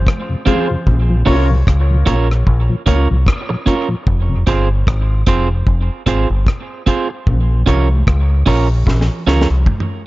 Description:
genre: dub reggae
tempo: 75 BPM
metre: 4/4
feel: swing 57% on 16ths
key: unclear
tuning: A4 = 440 Hz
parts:
  - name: deep dub fingered electric bass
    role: bass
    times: 0.0-9.7 s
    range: F1 to Db2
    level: -14 LUFS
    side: equal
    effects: none
  - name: deep reggae drum kit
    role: drums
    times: 0.1-10.0 s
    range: hi-hat, kick drum, rim click, snare drum, toms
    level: -16 LUFS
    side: equal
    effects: none
  - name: congas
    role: percussion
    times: 0.1-1.1, 7.3-9.9 s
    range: none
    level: -26 LUFS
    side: right 2 dB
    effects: dub echo
  - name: mellow tonewheel organ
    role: accompaniment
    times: 0.3-4.4 s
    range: F2 to F4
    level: -22 LUFS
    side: left 1 dB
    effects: chorus vibrato, slow rotary speaker
  - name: electric guitar at the edge of break-up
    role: accompaniment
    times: 0.5-9.5 s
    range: C4 to Db5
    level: -20 LUFS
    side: right 5 dB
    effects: dub echo
  - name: warm grand piano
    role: stabs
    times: 0.5-1.5 s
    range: F4 to Db5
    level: -25 LUFS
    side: left 3 dB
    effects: dub echo
room: small room ambience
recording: nothing above 7.6 kHz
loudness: -12 LUFS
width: side -18 dB against mid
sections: 0.0-10.1 A section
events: part muted 0.9-7.3; drum fill 8.9-10.1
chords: 0.0 Fm; 0.9 Bbm; 4.1 Fm; 7.3 Bbm

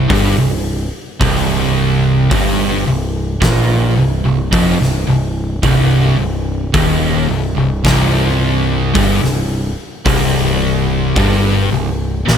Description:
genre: stoner and doom metal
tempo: 54 BPM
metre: 4/4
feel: straight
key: C minor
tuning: A4 = 440 Hz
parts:
  - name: distorted electric guitar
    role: riff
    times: 0.0-12.4 s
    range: C2 to Bb2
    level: -19 LUFS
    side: right 2 dB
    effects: distortion
  - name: thick fuzz guitar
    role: riff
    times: 0.0-12.4 s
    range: C2 to Bb2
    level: -18 LUFS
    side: left 7 dB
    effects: distortion
  - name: thick fuzz guitar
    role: riff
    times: 0.0-12.4 s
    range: C2 to Bb2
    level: -18 LUFS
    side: right 7 dB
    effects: distortion
  - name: growling picked electric bass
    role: bass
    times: 0.0-12.4 s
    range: C1 to Bb1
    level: -20 LUFS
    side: equal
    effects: overdrive, tube saturation
  - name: oversized low-tuned drum kit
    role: drums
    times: 0.1-12.4 s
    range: hi-hat, kick drum, snare drum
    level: -19 LUFS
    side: equal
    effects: none
room: studio ambience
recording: none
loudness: -12 LUFS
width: side -8 dB against mid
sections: 0.0-12.4 A section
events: none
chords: 0.0 Cm

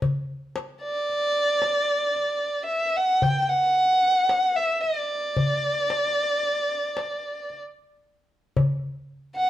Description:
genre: Arabic maqam ensemble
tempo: 112 BPM (eighths)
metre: 10/8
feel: straight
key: D maqam ajam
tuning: A4 = 440 Hz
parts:
  - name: darbuka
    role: percussion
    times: 0.0-9.5 s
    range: none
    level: -25 LUFS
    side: left 2 dB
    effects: none
  - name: dark violin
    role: melody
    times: 0.8-9.5 s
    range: D5 to G5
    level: -22 LUFS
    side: equal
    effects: none
room: moderate large studio reverb, RT60 0.9 s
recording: band playing live in one room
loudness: -21 LUFS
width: side -13 dB against mid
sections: 0.0-9.5 A section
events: none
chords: none

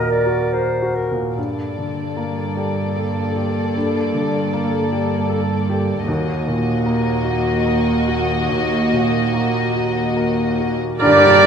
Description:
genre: cinematic, emotional film score for orchestra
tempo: 70-79 BPM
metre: 3/4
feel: rubato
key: unclear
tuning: A4 = 439 Hz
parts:
  - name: clear clarinet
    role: second line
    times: 0.0-1.4, 11.0-11.5 s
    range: Bb4 to D5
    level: -23 LUFS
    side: equal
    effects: none
  - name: small flute group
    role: second line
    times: 0.0-0.9, 11.0-11.5 s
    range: G4 to Bb4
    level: -22 LUFS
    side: equal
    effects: none
  - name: clear baby grand piano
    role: accompaniment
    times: 0.0-11.5 s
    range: Eb2 to Bb4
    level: -22 LUFS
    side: left 1 dB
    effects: none
  - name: rich studio violin section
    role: melody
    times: 1.4-11.5 s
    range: A4 to Eb5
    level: -27 LUFS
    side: left 4 dB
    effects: none
  - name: dark studio violin section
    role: second line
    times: 1.4-11.5 s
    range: Gb4 to D5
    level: -24 LUFS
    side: left 3 dB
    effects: none
  - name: dark chamber viola section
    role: accompaniment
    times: 1.4-11.5 s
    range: Bb3 to D5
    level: -20 LUFS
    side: right 3 dB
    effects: none
  - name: rich symphonic cello section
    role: bass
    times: 1.4-10.8 s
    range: Eb2 to G2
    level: -24 LUFS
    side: right 3 dB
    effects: none
  - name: warm oboe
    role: second line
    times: 11.0-11.5 s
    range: Bb4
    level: -18 LUFS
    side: right 1 dB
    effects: none
  - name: dark French horn section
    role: sustained chords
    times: 11.0-11.5 s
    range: Bb3 to G4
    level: -22 LUFS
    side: left 4 dB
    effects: none
  - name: dark symphonic double bass section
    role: bass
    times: 11.0-11.5 s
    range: G2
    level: -22 LUFS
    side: right 2 dB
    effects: none
  - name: tam-tam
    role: percussion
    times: 11.0-11.5 s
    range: none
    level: -22 LUFS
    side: left 3 dB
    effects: none
room: wet scoring stage reverb, RT60 1.7 s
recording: minimal, uncompressed stereo recording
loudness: -17 LUFS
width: side -7 dB against mid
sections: 0.0-1.4 A section; 1.4-11.0 B section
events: band accent 11.0-11.5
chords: 0.0 Ebm; 1.4 Gmadd9; 6.1 Ebm

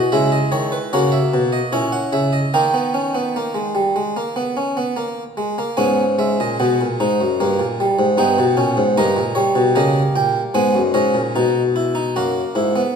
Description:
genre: classical, baroque-style 4-part fugue for harpsichord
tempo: 75 BPM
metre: 4/4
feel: straight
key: unclear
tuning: A4 = 440 Hz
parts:
  - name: harpsichord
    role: solo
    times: 0.0-13.0 s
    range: F#2 to G#5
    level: -16 LUFS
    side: equal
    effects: none
room: wet recital hall reverb, RT60 1.5 s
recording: minimal, uncompressed stereo recording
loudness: -16 LUFS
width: side -6 dB against mid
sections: 0.0-5.8 A section; 5.8-12.2 B section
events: none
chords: 0.0 C#m; 0.9 A#dim; 2.5 D#; 5.8 G#m; 7.4 D#/G; 9.0 D#7/G; 10.6 D#m/F#

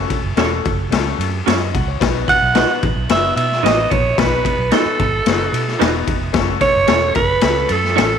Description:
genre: uptempo 1960s-style soul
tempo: 111 BPM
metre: 4/4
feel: straight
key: B mixolydian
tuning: A4 = 440 Hz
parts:
  - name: clear grand piano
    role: accompaniment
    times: 0.0-8.2 s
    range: A3 to F#5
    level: -23 LUFS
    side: left 10 dB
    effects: none
  - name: vintage muted fingered electric bass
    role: bass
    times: 0.0-8.2 s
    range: E1 to B2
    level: -22 LUFS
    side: right 3 dB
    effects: none
  - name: raw garage drum kit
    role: drums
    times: 0.1-8.1 s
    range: kick drum, ride cymbal, snare drum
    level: -19 LUFS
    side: left 5 dB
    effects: none
  - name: electric guitar through a small old amp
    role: stabs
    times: 0.4-8.1 s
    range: C#4 to D#5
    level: -22 LUFS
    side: right 14 dB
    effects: wide subtle chorus
  - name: raspy alto saxophone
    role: melody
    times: 2.3-8.2 s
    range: A4 to F#5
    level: -17 LUFS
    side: right 3 dB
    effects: none
  - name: glockenspiel with soft plastic mallets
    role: second line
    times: 2.3-8.2 s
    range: A6 to F#7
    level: -26 LUFS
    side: right 14 dB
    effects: none
room: light reverb, small room ambience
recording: 1960s-style stereo with parts hard left and right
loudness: -14 LUFS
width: side -7 dB against mid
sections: 0.0-8.2 A section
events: none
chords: 0.0 F#m; 2.0 B; 6.3 F#m

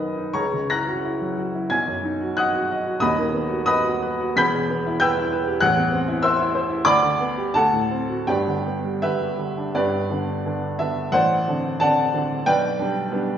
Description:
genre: classical, romantic character piece for solo piano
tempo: 78-98 BPM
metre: 2/4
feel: rubato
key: B major, G major from 4.4 s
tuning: A4 = 440 Hz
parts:
  - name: warm baby grand piano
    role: solo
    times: 0.0-13.4 s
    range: D#1 to B6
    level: -20 LUFS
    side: equal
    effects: none
room: wet recital hall reverb, RT60 1.5 s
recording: heard from further back in the room, nothing above 7.6 kHz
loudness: -19 LUFS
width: side -9 dB against mid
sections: 0.0-9.8 A section; 9.8-13.4 B section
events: none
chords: 0.3 F#7/C#; 1.7 B; 3.0 B/D#; 4.4 Em; 5.6 Am; 6.9 G/D; 7.5 D7; 8.3 G; 11.1 D7/A; 12.5 G/B

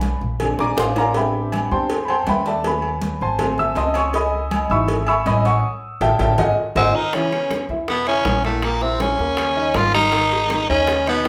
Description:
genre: Afro-Cuban jazz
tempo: 160 BPM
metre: 4/4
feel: straight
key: C# minor from 7.1 s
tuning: A4 = 441 Hz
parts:
  - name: warm grand piano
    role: accompaniment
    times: 0.0-11.3 s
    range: D#3 to E6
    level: -24 LUFS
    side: equal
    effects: none
  - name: upright bass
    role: bass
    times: 0.0-11.3 s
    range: G#1 to E2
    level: -27 LUFS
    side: equal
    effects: none
  - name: congas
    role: percussion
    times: 0.0-11.3 s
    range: none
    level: -32 LUFS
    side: equal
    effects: none
  - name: cowbell and bongos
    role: percussion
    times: 0.0-11.3 s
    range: none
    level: -30 LUFS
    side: equal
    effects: none
  - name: timbales and agogo bells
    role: percussion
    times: 0.0-11.3 s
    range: none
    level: -31 LUFS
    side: equal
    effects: none
  - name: growling tenor saxophone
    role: melody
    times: 6.8-11.3 s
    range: A3 to E#4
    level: -21 LUFS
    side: equal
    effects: none
  - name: edgy baritone saxophone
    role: second line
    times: 6.8-11.3 s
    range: A2 to E#3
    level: -30 LUFS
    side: equal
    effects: none
room: wet large studio reverb, RT60 0.9 s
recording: band playing live in one room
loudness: -19 LUFS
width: mono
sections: 0.0-7.1 A section; 7.1-11.3 B section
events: grand piano solo 0.0-7.1; drum fill 0.6-1.2, 5.6-7.1; band accent 5.6-7.1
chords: 0.4 A#9; 1.2 Am11; 2.6 D#m7b5; 3.4 G#7b9; 4.1 C#m11; 5.6 A5; 6.4 G#5; 7.1 C#m7; 8.6 A#dim; 9.4 D#5; 10.1 G#m

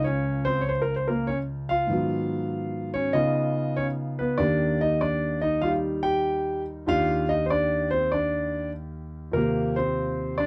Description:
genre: solo jazz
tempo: 97 BPM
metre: 4/4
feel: swing 67% on 8ths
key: Eb major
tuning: A4 = 437 Hz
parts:
  - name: warm concert grand piano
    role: solo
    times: 0.0-10.5 s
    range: Db2 to G5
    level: -26 LUFS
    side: equal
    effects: none
room: light reverb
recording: nothing above 10.4 kHz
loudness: -26 LUFS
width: mono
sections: 0.0-9.3 A section; 9.3-10.5 B section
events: none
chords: 0.0 Dbmaj7; 1.9 Abm7; 3.1 Db9; 4.4 Eb69

